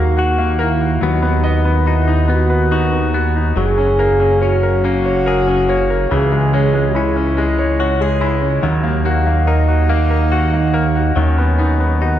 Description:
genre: six-eight pop ballad.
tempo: 47 BPM (dotted quarters).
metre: 6/8.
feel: straight.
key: B major.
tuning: A4 = 440 Hz.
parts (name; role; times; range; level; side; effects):
dark French horn section; second line; 0.0-12.2 s; B3 to G#4; -20 LUFS; right 1 dB; none.
bright concert grand piano; accompaniment; 0.0-12.2 s; C#3 to D#5; -20 LUFS; left 2 dB; none.
direct-recorded clean electric guitar; arpeggios; 0.0-12.2 s; E3 to G#4; -23 LUFS; left 4 dB; none.
fat analog bass; bass; 0.0-12.2 s; F#1 to D#2; -16 LUFS; equal; none.
room: moderate concert hall reverb, RT60 2.0 s.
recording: recorded in a church or concert hall.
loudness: -13 LUFS.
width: side -11 dB against mid.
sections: 0.0-12.2 A section.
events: none.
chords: 0.0 D#m; 1.0 B/D#; 3.6 F#add9; 6.1 C#m; 8.6 D#m; 11.2 B/D#.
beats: | 1.02 2.29 | 3.57 4.84 | 6.11 7.38 | 8.63 9.89 | 11.16.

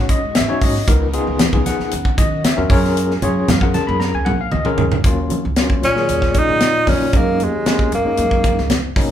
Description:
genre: electric jazz fusion.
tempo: 115 BPM.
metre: 4/4.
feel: straight.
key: F# major.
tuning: A4 = 439 Hz.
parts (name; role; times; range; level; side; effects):
overdriven tine electric piano; accompaniment; 0.0-9.1 s; F#3 to B5; -21 LUFS; left 3 dB; fast tremolo.
string machine, cellos; sustained chords; 0.0-5.0 s; C#3 to A#4; -30 LUFS; right 2 dB; none.
upright bass; bass; 0.0-9.1 s; G#1 to D#3; -22 LUFS; right 1 dB; none.
tight funk drum kit; drums; 0.1-9.1 s; hi-hat, kick drum, snare drum, toms; -18 LUFS; equal; none.
congas; percussion; 0.1-9.0 s; none; -25 LUFS; right 2 dB; none.
breathy tenor saxophone; melody; 5.8-8.9 s; G#3 to D#4; -17 LUFS; right 1 dB; none.
dark bass clarinet; second line; 5.8-9.0 s; D#2 to A#2; -24 LUFS; left 1 dB; none.
room: moderate large studio reverb, RT60 0.9 s.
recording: band playing live in one room.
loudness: -14 LUFS.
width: side -10 dB against mid.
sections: 0.0-5.0 A section; 5.0-9.1 B section.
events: drum fill 4.0-5.0.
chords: 0.0 G#7sus4; 0.9 C#13; 1.9 D#m9; 2.7 F#maj9; 5.0 F#69.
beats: 0.35 | 0.88 1.40 1.92 2.44 | 2.96 3.48 4.00 4.53 | 5.05 5.57 6.09 6.61 | 7.14 7.66 8.18 8.71.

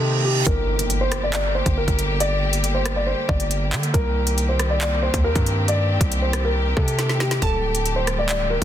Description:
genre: hip hop, drill.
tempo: 138 BPM.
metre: 4/4.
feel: half-time.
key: G minor.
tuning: A4 = 440 Hz.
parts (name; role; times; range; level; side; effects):
dark concert grand piano; melody; 0.0-8.6 s; G4 to D5; -25 LUFS; left 1 dB; low-pass filter, ping-pong delay.
concert harp; accompaniment; 0.0-3.0 s; Bb3 to G4; -35 LUFS; left 1 dB; low-pass filter.
warm studio string section; sustained chords; 0.0-8.6 s; D3 to G4; -27 LUFS; left 1 dB; none.
distorted 808-style bass; bass; 0.0-8.6 s; D1 to D3; -23 LUFS; equal; distortion.
reverse cymbal and impact; sound effects; 0.0-2.2 s; none; -29 LUFS; right 3 dB; none.
drill drum kit; drums; 0.5-8.6 s; handclaps, hi-hat, kick drum, rim click, snare drum; -24 LUFS; equal; none.
glassy wavetable pluck; second line; 7.4-8.6 s; A5; -30 LUFS; right 4 dB; chorus, ping-pong delay.
room: digital ambience.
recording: dense, heavily limited modern master.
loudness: -18 LUFS.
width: side -11 dB against mid.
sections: 0.5-8.6 A section.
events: reverse cymbal 0.0-0.5; impact 0.5-2.2; drum fill 7.0-7.4.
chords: 0.5 Gm; 3.9 Cm7; 7.4 Dsus4.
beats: 0.03 | 0.47 0.90 1.33 1.77 | 2.20 2.64 3.07 3.51 | 3.94 4.38 4.81 5.25 | 5.68 6.12 6.55 6.99 | 7.42 7.86 8.29.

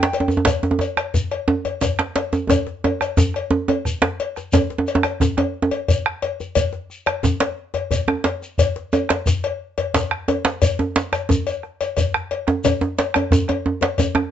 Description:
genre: west african traditional, West African drum ensemble.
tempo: 118 BPM (dotted quarters).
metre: 12/8.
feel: straight.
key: none.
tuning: none.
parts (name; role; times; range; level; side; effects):
djembe; percussion; 0.0-14.3 s; none; -19 LUFS; right 3 dB; none.
cowbell; percussion; 0.1-14.1 s; none; -24 LUFS; left 7 dB; none.
djembe; percussion; 0.1-14.2 s; none; -26 LUFS; left 5 dB; none.
shekere; percussion; 0.3-14.1 s; none; -28 LUFS; left 2 dB; none.
bombo; percussion; 0.5-14.3 s; none; -22 LUFS; right 1 dB; none.
room: light reverb.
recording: nothing above 7.9 kHz.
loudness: -18 LUFS.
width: side -10 dB against mid.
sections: 0.0-4.5 A section; 4.5-14.3 B section.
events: drum fill 2.5-4.5, 12.1-12.6.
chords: none.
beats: | 0.47 0.97 1.48 1.99 | 2.50 3.01 3.52 4.02 | 4.53 5.04 5.55 6.05 | 6.56 7.07 7.58 8.08 | 8.59 9.10 9.60 10.11 | 10.62 11.12 11.63 12.13 | 12.64 13.14 13.65 14.15.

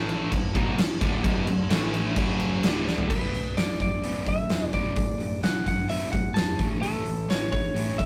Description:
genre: hard rock.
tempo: 129 BPM.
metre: 4/4.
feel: straight.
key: B minor.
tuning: A4 = 441 Hz.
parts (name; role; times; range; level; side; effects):
sludgy distorted guitar; riff; 0.0-8.1 s; B1 to A3; -35 LUFS; equal; none.
tight distorted guitar; riff; 0.0-8.1 s; B1 to A3; -38 LUFS; equal; none.
tight distorted guitar; riff; 0.0-3.1 s; B1 to A3; -33 LUFS; equal; distortion.
growling picked electric bass; bass; 0.0-8.1 s; B0 to A1; -38 LUFS; equal; none.
huge arena drum kit; drums; 0.1-8.1 s; crash cymbal, hi-hat, kick drum, snare drum, toms; -28 LUFS; equal; none.
lightly driven lead guitar; melody; 3.1-8.1 s; A4 to A5; -33 LUFS; equal; none.
room: moderate studio ambience, RT60 0.5 s.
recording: rough rehearsal-room recording, tube saturation.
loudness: -26 LUFS.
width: mono.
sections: 0.0-3.1 A section; 3.1-8.1 B section.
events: drum fill 2.9.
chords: 0.3 Bm; 1.7 A5; 2.2 F#5; 2.6 D5; 3.1 Bm; 6.6 A.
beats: 0.32 0.78 | 1.25 1.71 2.18 2.64 | 3.11 3.57 4.04 4.50 | 4.97 5.43 5.90 6.37 | 6.83 7.30 7.76.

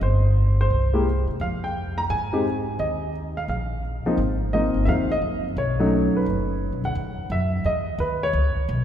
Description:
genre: jazz.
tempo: 173 BPM.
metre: 4/4.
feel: swing 65% on 8ths.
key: unclear.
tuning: A4 = 440 Hz.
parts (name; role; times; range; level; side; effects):
warm baby grand piano; melody; 0.0-8.8 s; F3 to Bb5; -24 LUFS; equal; none.
upright bass; bass; 0.0-8.8 s; F#1 to C3; -24 LUFS; equal; none.
room: wet church reverb, RT60 3.8 s.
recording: recorded in a church or concert hall.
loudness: -21 LUFS.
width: side -10 dB against mid.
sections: 0.0-7.0 A section; 7.0-8.8 B section.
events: none.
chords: 0.0 Gsus4; 0.7 N.C.; 1.4 Fmadd9; 2.8 Ebsus2; 4.2 Ab6; 5.6 B7; 7.0 C#madd9 (rootless).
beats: | 0.01 0.36 0.71 1.06 | 1.41 1.75 2.10 2.45 | 2.79 3.14 3.49 3.84 | 4.18 4.53 4.88 5.22 | 5.57 5.92 6.27 6.61 | 6.96 7.31 7.65 8.00 | 8.35 8.69.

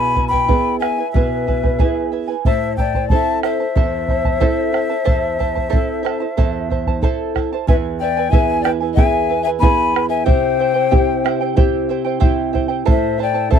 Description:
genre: andean folk, Andean ensemble.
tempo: 92 BPM.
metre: 4/4.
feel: straight.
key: unclear.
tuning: A4 = 440 Hz.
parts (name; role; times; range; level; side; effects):
bright large quena; melody; 0.0-13.6 s; E5 to B5; -21 LUFS; left 3 dB; none.
polished pan flute; second line; 0.0-13.6 s; B4 to G#5; -22 LUFS; left 18 dB; none.
charango; accompaniment; 0.0-13.6 s; E4 to A5; -22 LUFS; right 12 dB; none.
nylon-string guitar; accompaniment; 0.0-13.6 s; E2 to A4; -22 LUFS; equal; none.
bombo; percussion; 0.2-13.6 s; none; -17 LUFS; right 1 dB; none.
room: little or no reverb.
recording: dry, close 1970s-style studio recording.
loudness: -15 LUFS.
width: side -8 dB against mid.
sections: 0.0-7.7 A section; 7.7-13.6 B section.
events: none.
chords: 0.0 E; 2.4 Am; 7.7 E; 10.3 C; 12.9 Am.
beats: 0.49 1.14 1.79 | 2.45 3.10 3.76 4.41 | 5.06 5.72 6.37 7.02 | 7.67 8.32 8.97 9.62 | 10.28 10.93 11.57 12.22 | 12.87 13.52.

